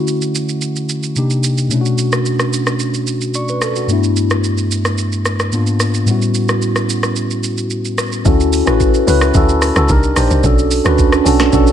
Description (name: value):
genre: amapiano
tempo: 110 BPM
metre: 4/4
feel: straight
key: unclear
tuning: A4 = 440 Hz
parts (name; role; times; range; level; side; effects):
- mellow tine electric piano; accompaniment; 0.0-11.7 s; G2 to C#6; -15 LUFS; equal; phaser, low-pass filter
- smooth R&B drum kit; drums; 0.1-11.7 s; hi-hat, kick drum, rim click, shaker, snare drum; -18 LUFS; right 1 dB; none
- woody log drum bass; bass; 8.3-11.7 s; A1 to D2; -15 LUFS; equal; none
room: digital ambience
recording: none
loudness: -13 LUFS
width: side -9 dB against mid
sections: 0.0-8.3 A section; 8.3-11.7 B section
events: filter sweep on tine electric piano 0.0-8.3; tine electric piano fill 3.1-3.9, 11.5; drop 8.3-11.7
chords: 0.0 Dmaj9; 1.2 Cm9; 1.7 Bm9; 3.9 G69; 5.5 G#dim7; 6.1 A13; 8.3 Dmaj9; 9.9 Cm9; 10.4 Bm9